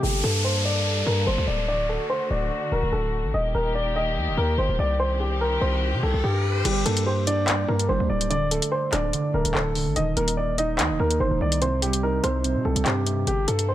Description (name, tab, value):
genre	hip hop, drill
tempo	145 BPM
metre	4/4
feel	half-time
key	G harmonic minor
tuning	A4 = 441 Hz
part	dark grand piano	melody	0.0-13.7 s	G4 to Eb5	-26 LUFS	left 1 dB	low-pass filter, digital delay
part	felt-muted upright piano	accompaniment	0.0-0.1, 6.7-13.3 s	C3 to Eb5	-27 LUFS	right 5 dB	low-pass filter
part	warm chamber string section	sustained chords	0.0-6.6, 13.3-13.7 s	D3 to A4	-31 LUFS	left 2 dB	low-pass filter
part	distorted 808-style bass	bass	0.0-13.7 s	D1 to C3	-25 LUFS	equal	distortion
part	downlifter and riser	sound effects	0.0-6.7 s	none	-31 LUFS	left 1 dB	none
part	drill drum kit	drums	6.7-13.7 s	crash cymbal, handclaps, hi-hat, rim click	-27 LUFS	left 1 dB	none
room	small room ambience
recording	none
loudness	-21 LUFS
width	side -12 dB against mid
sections	0.0-6.7 A section; 6.7-13.7 B section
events	filter sweep 0.0-6.7; riser 4.7-6.7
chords	0.0 Gmadd9; 1.7 D; 3.3 Eb; 5.0 Cm; 6.7 Gm; 8.3 D5; 10.0 Eb5; 11.6 Cm